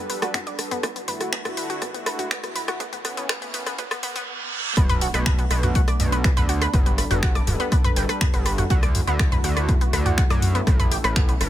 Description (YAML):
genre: melodic techno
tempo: 122 BPM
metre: 4/4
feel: straight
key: B minor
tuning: A4 = 440 Hz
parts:
  - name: warm analog pad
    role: sustained chords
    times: 0.0-11.5 s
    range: A2 to B4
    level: -31 LUFS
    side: equal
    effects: chorus, sidechain pumping
  - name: analog pluck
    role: arpeggios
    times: 0.0-11.5 s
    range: B3 to D6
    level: -28 LUFS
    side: equal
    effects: chorus, sidechain pumping, tape echo
  - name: riser, reverse cymbal and impact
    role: sound effects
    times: 2.8-6.7 s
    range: none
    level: -34 LUFS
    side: right 4 dB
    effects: none
  - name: house drum kit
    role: drums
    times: 0.1-11.5 s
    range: finger snaps, hi-hat, rim click, toms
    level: -27 LUFS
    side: equal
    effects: none
  - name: electronic kick drum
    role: drums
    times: 0.3-11.3 s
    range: none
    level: -21 LUFS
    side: equal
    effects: high-pass filter on kick
  - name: gritty driven synth bass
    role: bass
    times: 4.8-11.5 s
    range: D1 to F#2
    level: -25 LUFS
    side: equal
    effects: sidechain pumping
room: little or no reverb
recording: high-pass filter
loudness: -20 LUFS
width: side -12 dB against mid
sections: 0.0-4.8 A section; 4.8-11.5 B section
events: build-up 0.0-4.8; filter sweep on synth arpeggio sound 0.0-4.8; filter sweep 0.0-4.8; riser 2.8-4.3; reverse cymbal 3.8-4.8; drop 4.8-11.5; impact 4.8-6.7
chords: 0.0 Gmaj7; 0.8 D; 2.8 A; 4.8 Bm7; 6.7 Gmaj7; 8.7 D; 10.7 A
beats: 0.34 | 0.83 1.33 1.82 2.31 | 2.80 3.29 3.79 4.28 | 4.77 5.26 5.75 6.24 | 6.74 7.23 7.72 8.21 | 8.70 9.20 9.69 10.18 | 10.67 11.16